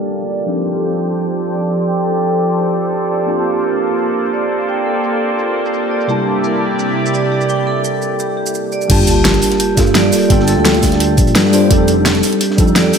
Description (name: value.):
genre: liquid drum and bass.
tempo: 171 BPM.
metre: 4/4.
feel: straight.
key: G dorian.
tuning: A4 = 440 Hz.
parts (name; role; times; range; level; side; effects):
mellow tine electric piano; accompaniment; 0.0-13.0 s; C3 to A5; -18 LUFS; equal; ensemble chorus, diffuse ambient delay.
lush unison pad; sustained chords; 0.0-8.9 s; C3 to A5; -19 LUFS; equal; chorus, sidechain pumping.
vibraphone with medium hard mallets; arpeggios; 0.0-13.0 s; G4 to G5; -18 LUFS; right 3 dB; low-pass filter, tape echo.
pop drum kit; drums; 0.0-13.0 s; crash cymbal, hi-hat, shaker, snare drum; -17 LUFS; equal; overdrive.
downlifter and sub drop; sound effects; 0.0-0.5, 8.9-10.3 s; none; -23 LUFS; left 1 dB; none.
smooth synth bass; bass; 8.9-12.9 s; F1 to G2; -16 LUFS; left 1 dB; none.
crunchy breakbeat drum kit; drums; 8.9-13.0 s; hi-hat, snare drum; -24 LUFS; equal; high-pass filter on hats, high-pass filter on snare, high-pass filter on room.
electronic kick drum; drums; 8.9-12.7 s; none; -14 LUFS; equal; overdrive.
room: wet lush hall reverb, RT60 2.0 s.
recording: dreamy mix soaked in reverb, low-pass filter.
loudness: -12 LUFS.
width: side -6 dB against mid.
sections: 0.0-8.9 A section; 8.9-13.0 B section.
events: filter sweep on vibraphone 0.0-8.9; filter sweep 0.0-8.9; drop 8.9-13.0; impact 8.9-10.3.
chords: 0.5 F13; 3.3 Bbmaj9; 6.1 C13; 8.9 Gm9; 11.7 F13.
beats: 0.12 | 0.48 0.83 1.18 1.53 | 1.88 2.23 2.58 2.93 | 3.28 3.63 3.98 4.34 | 4.69 5.04 5.39 5.74 | 6.09 6.44 6.79 7.14 | 7.49 7.84 8.20 8.55 | 8.90 9.25 9.60 9.95 | 10.30 10.65 11.00 11.35 | 11.70 12.05 12.41 12.76.